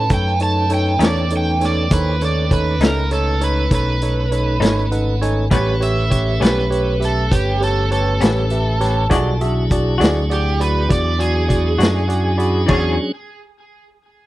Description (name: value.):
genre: slow blues.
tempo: 67 BPM (dotted quarters).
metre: 12/8.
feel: straight.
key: unclear.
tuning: A4 = 439 Hz.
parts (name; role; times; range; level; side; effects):
overdriven slide guitar; second line; 0.0-13.0 s; G4 to A5; -23 LUFS; right 2 dB; tape echo.
barky tine electric piano; accompaniment; 0.0-13.0 s; D#4 to B5; -23 LUFS; right 2 dB; lush chorus.
tonewheel organ; sustained chords; 0.0-13.1 s; F#3 to C5; -25 LUFS; equal; overdrive, slow rotary speaker.
picked electric bass; bass; 0.0-13.0 s; G1 to F#2; -19 LUFS; equal; none.
vintage drum kit; drums; 0.1-12.8 s; crash cymbal, hi-hat, kick drum, snare drum; -18 LUFS; equal; none.
electric guitar through a small old amp; accompaniment; 1.0-12.9 s; A2 to C#5; -22 LUFS; left 4 dB; tremolo.
room: little or no reverb.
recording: dry, close 1970s-style studio recording.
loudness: -15 LUFS.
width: side -16 dB against mid.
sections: 0.0-12.7 A section; 12.7-14.3 B section.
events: electric slide guitar solo 0.0-12.7; tine electric piano fill 4.6-5.5, 11.8-12.7.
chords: 0.0 B9; 5.5 A9; 9.1 E9; 12.7 E13.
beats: 0.11 1.01 | 1.91 2.82 3.72 4.62 | 5.52 6.42 7.32 8.22 | 9.11 10.01 10.91 11.80 | 12.70.